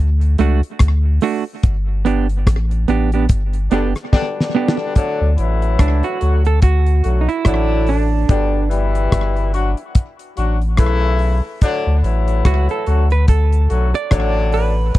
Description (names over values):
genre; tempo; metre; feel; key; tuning
roots reggae; 72 BPM; 4/4; swing 59% on 16ths; D major; A4 = 440 Hz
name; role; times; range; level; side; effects
warm sub bass; bass; 0.0-15.0 s; F#1 to D2; -15 LUFS; equal; none
damped 70s drum kit; drums; 0.2-15.0 s; hi-hat, kick drum, rim click, snare drum; -14 LUFS; equal; none
semi-hollow electric guitar; accompaniment; 0.4-15.0 s; A3 to D5; -21 LUFS; right 7 dB; tape echo
mellow horn section; second line; 3.7-15.0 s; A2 to F#4; -22 LUFS; left 4 dB; tape echo
room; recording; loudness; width
little or no reverb; dry, close 1970s-style studio recording; -14 LUFS; side -16 dB against mid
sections
0.0-5.0 A section; 5.0-15.0 B section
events
band accent 1.6-5.0; drum fill 4.1-5.0; clean electric guitar solo 5.0-15.0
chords
0.0 D; 1.6 G; 5.0 D; 8.3 G; 10.0 D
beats
0.80 | 1.63 2.47 3.30 4.13 | 4.96 5.80 6.63 7.46 | 8.29 9.13 9.96 10.79 | 11.62 12.46 13.29 14.12 | 14.96